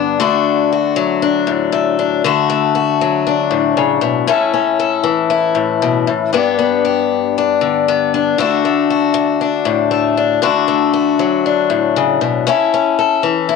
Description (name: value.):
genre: highlife.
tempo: 118 BPM.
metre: 4/4.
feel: swing 54% on 16ths.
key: D major.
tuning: A4 = 439 Hz.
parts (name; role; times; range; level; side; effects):
picked acoustic archtop guitar; solo; 0.0-13.6 s; G2 to A4; -13 LUFS; left 7 dB; none.
room: moderate spring reverb, RT60 1.1 s, studio reverb.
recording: none.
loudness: -13 LUFS.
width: side -4 dB against mid.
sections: 0.2-13.6 A section.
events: none.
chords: 0.2 D; 4.3 A; 6.3 G; 8.4 D; 12.5 A.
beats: | 0.20 0.71 1.22 1.74 | 2.25 2.76 3.27 3.78 | 4.29 4.80 5.31 5.82 | 6.33 6.84 7.35 7.86 | 8.37 8.88 9.39 9.90 | 10.41 10.93 11.44 11.95 | 12.46 12.97 13.48.